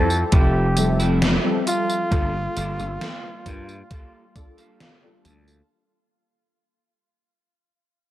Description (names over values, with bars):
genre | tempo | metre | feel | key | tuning
vaporwave | 67 BPM | 4/4 | straight | unclear | A4 = 437 Hz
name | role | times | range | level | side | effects
breathy flugelhorn | melody | 0.0-5.2 s | F4 to A4 | -26 LUFS | equal | tape echo
warbly lo-fi synth keys | accompaniment | 0.0-5.6 s | F3 to E5 | -27 LUFS | left 1 dB | ensemble chorus, analog delay
warbly tape-like pad | sustained chords | 0.0-5.7 s | F3 to A5 | -38 LUFS | left 2 dB | none
gritty slap bass | bass | 0.0-5.6 s | F1 to G2 | -22 LUFS | equal | overdrive
gated 80s digital drum machine | drums | 0.1-5.7 s | hi-hat, snare drum, tambourine | -26 LUFS | equal | gated reverb, gated reverb snare, overdrive
clean electric guitar | riff | 0.3-5.7 s | Bb3 to A5 | -32 LUFS | right 2 dB | analog chorus, vintage 12-bit sampler grit, analog delay
electronic kick drum | drums | 0.3-4.5 s | none | -20 LUFS | equal | overdrive
room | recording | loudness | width
light reverb, digital ambience | none | -18 LUFS | side -14 dB against mid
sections
0.0-5.7 A section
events
fade-out 0.0-5.7; clean electric guitar fill 3.9-5.7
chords
0.0 Fmaj9; 2.1 Gm9